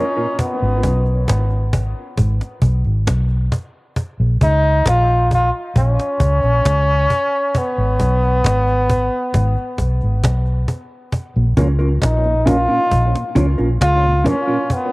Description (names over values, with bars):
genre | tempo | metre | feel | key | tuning
dub reggae | 67 BPM | 4/4 | straight | unclear | A4 = 445 Hz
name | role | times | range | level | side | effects
brilliant trombone | melody | 0.0-14.9 s | B3 to E#4 | -19 LUFS | equal | cassette tape, tape echo
mellow electric guitar | accompaniment | 0.0-0.3, 11.6-14.6 s | C#4 to A#4 | -22 LUFS | right 1 dB | cassette tape, tape echo
mellow tonewheel organ | accompaniment | 0.0-0.3, 11.4-14.6 s | A#2 to C#4 | -27 LUFS | left 1 dB | chorus vibrato, slow rotary speaker, cassette tape, tape echo
cajon | drums | 0.4-14.9 s | none | -20 LUFS | equal | cassette tape
vintage muted fingered electric bass | bass | 0.6-14.2 s | G#1 to C#2 | -16 LUFS | equal | none
room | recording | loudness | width
light reverb, small room ambience | home recording on cassette | -14 LUFS | side -23 dB against mid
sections
0.0-14.9 A section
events
none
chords
0.4 G#m; 4.0 A#m; 7.5 G#m; 11.1 A#m